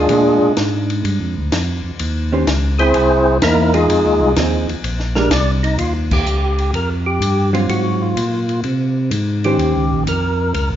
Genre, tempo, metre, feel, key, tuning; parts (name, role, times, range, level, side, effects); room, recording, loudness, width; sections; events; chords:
soul jazz organ trio; 126 BPM; 4/4; swing 68% on 8ths; A4 = 440 Hz
percussive tonewheel organ; melody; 0.0-10.7 s; Ab3 to D5; -17 LUFS; equal; slow rotary speaker, overdrive
tonewheel organ; bass; 0.0-10.8 s; Bb1 to C3; -18 LUFS; equal; overdrive, slow rotary speaker
vintage hollow-body jazz guitar; accompaniment; 0.1-10.1 s; Eb3 to C5; -20 LUFS; right 3 dB
compact cocktail drum kit; drums; 0.1-10.7 s; crash cymbal, hi-hat, kick drum, ride cymbal, snare drum; -24 LUFS; left 1 dB
moderate recital hall reverb, RT60 1.7 s; recorded in a church or concert hall, nothing above 7.5 kHz; -14 LUFS; side -10 dB against mid
0.0-5.8 A section; 5.8-10.8 B section
tonewheel organ solo 0.0-5.8; band accent 6.0
0.1 Bb6; 2.0 Eb6; 2.9 C7alt; 3.9 Fm7; 4.8 Bb13; 5.8 Eb9; 7.7 Ab13; 9.6 Eb13